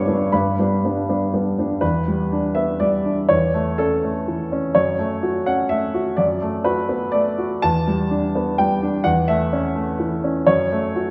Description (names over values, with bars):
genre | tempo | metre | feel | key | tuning
neoclassical minimalist piano | 124 BPM | 3/4 | rubato | E dorian | A4 = 438 Hz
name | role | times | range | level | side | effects
warm baby grand piano | solo | 0.0-11.1 s | E2 to E6 | -20 LUFS | equal | none
room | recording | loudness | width
wet concert hall reverb, RT60 1.9 s | recorded in a church or concert hall | -20 LUFS | mono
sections
0.0-1.8 A section; 1.8-11.1 B section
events
none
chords
0.0 G; 1.8 Em7; 3.3 A/E; 4.8 F#m; 6.2 Bm7/F#; 7.6 Em7; 9.1 A/E; 10.5 F#m